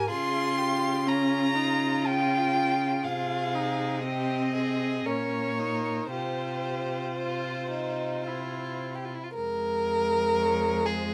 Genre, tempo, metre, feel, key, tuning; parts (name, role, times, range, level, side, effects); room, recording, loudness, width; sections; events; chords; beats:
classical, slow romantic movement for string quartet; 51-62 BPM; 3/4; rubato; F minor; A4 = 440 Hz
rich violin; melody; 0.0-11.1 s; C5 to C6; -33 LUFS; equal
rich violin; second line; 0.0-11.1 s; Eb4 to Bb4; -33 LUFS; equal
rich viola; accompaniment; 0.0-11.1 s; Ab3 to F4; -35 LUFS; equal
clear cello; bass; 0.0-11.1 s; F2 to Db3; -34 LUFS; equal
light reverb; close, detailed microphones; -28 LUFS; mono
0.0-9.4 A section; 9.4-11.1 B section
0.1 Dbmaj7; 3.0 Ab/C; 5.1 Bbmadd11; 6.1 Csus4; 8.3 C; 9.4 Fm
| 0.09 1.06 2.04 | 3.04 4.04 5.06 | 6.13 7.19 8.25 | 9.38 10.39